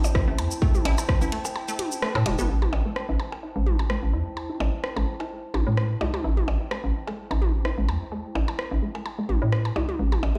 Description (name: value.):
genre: minimal techno.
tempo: 128 BPM.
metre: 4/4.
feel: swing 54% on 16ths.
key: A minor.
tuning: A4 = 440 Hz.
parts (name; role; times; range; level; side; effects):
hollow knocking FM bass; bass; 0.0-10.3 s; E1 to A2; -26 LUFS; equal; sidechain pumping.
house drum kit; drums; 0.0-9.6 s; hi-hat, rim click, shaker; -33 LUFS; equal; none.
electronic percussion blips and toms; percussion; 0.0-10.3 s; none; -34 LUFS; equal; dub echo.
warbly tape-like pad; texture; 0.0-10.4 s; E4 to A5; -39 LUFS; equal; chorus, built-in reverb, sidechain pumping.
resonant blip pluck; riff; 0.1-10.4 s; A3 to A4; -37 LUFS; equal; subtle chorus, sidechain pumping, dub echo.
electronic kick drum; drums; 0.1-1.2 s; none; -24 LUFS; equal; none.
kalimba; melody; 10.4 s; G4; -46 LUFS; equal; none.
room: light reverb.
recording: played on a big sound system in a bare room, stone room reverb.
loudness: -26 LUFS.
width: mono.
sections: 0.0-2.5 A section; 2.5-10.4 B section.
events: drop 0.0-2.5; break 1.6-2.5; band accent 2.0.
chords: 0.0 Am7.